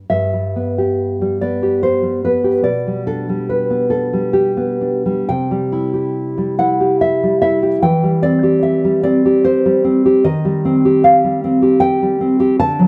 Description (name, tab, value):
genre	romantic piece for solo classical guitar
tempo	61-78 BPM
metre	3/4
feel	rubato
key	G major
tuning	A4 = 439 Hz
part	nylon-string guitar	solo	0.0-12.9 s	G2 to A5	-16 LUFS	equal	none
room	light reverb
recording	dark, warm production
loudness	-16 LUFS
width	mono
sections	0.1-12.9 A section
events	none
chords	0.1 G; 2.7 G/B; 5.3 C; 7.8 C/E; 10.3 Cm/Eb